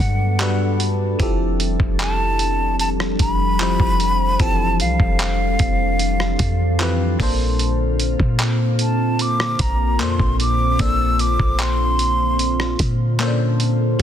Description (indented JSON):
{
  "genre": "contemporary R&B",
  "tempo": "75 BPM",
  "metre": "4/4",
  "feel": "straight",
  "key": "unclear",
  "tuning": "A4 = 440 Hz",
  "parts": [
    { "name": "breathy mellow silver concert flute", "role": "melody", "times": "0.0-12.8 s", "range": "F5 to E6", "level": "-22 LUFS", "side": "equal", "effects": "tape echo" },
    { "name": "FM electric piano", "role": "accompaniment", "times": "0.0-14.0 s", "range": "Bb2 to C5", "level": "-25 LUFS", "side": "left 3 dB", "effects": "chorus, phaser" },
    { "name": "glassy FM pad", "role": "sustained chords", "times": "0.0-14.0 s", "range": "D3 to A4", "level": "-25 LUFS", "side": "equal", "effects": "ensemble chorus, built-in reverb" },
    { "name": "clean 808-style bass", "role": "bass", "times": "0.0-14.0 s", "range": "F1 to Bb2", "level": "-21 LUFS", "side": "equal", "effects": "none" },
    { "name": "dusty soul sampler-style drum kit", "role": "drums", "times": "0.0-14.0 s", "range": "handclaps, hi-hat, kick drum, rim click", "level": "-22 LUFS", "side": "equal", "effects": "none" }
  ],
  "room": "little or no reverb",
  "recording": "dense, heavily limited modern master",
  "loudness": "-16 LUFS",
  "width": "side -9 dB against mid",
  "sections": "0.0-14.0 A section",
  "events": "none",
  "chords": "0.0 Gmaj9; 1.2 Fmaj9; 7.2 Bbmaj9",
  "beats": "0.40 | 1.20 2.00 2.80 3.60 | 4.40 5.20 6.00 6.80 | 7.60 8.40 9.20 10.00 | 10.80 11.60 12.40 13.20 | 14.00"
}